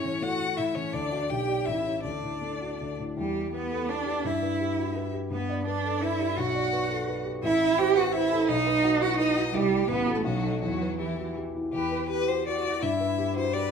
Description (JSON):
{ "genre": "quick classical-period movement for piano trio", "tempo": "168 BPM", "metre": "3/4", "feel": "rubato", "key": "D major, E minor from 3.2 s", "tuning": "A4 = 439 Hz", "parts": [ { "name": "clear violin", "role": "melody", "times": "0.0-13.7 s", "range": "E4 to G5", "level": "-32 LUFS", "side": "left 7 dB", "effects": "none" }, { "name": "warm cello", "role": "second line", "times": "0.0-13.7 s", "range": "E3 to B4", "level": "-28 LUFS", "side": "right 5 dB", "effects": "none" }, { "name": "dark baby grand piano", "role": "accompaniment", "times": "0.0-13.7 s", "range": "A1 to E5", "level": "-30 LUFS", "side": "left 2 dB", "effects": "none" } ], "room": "moderate recital hall reverb, RT60 1.5 s", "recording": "minimal, uncompressed stereo recording", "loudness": "-25 LUFS", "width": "side -6 dB against mid", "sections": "0.0-3.2 A section; 3.2-11.7 B section; 11.7-13.7 B section", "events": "none", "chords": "0.0 A; 0.9 D; 1.3 G/B; 1.7 A7; 2.1 D; 3.2 Em; 4.2 Em/G; 5.3 G; 6.4 G/B; 7.4 Am; 8.5 B; 9.5 C; 9.9 F#madd11/A; 10.3 B7; 10.6 Em; 12.8 Em/G" }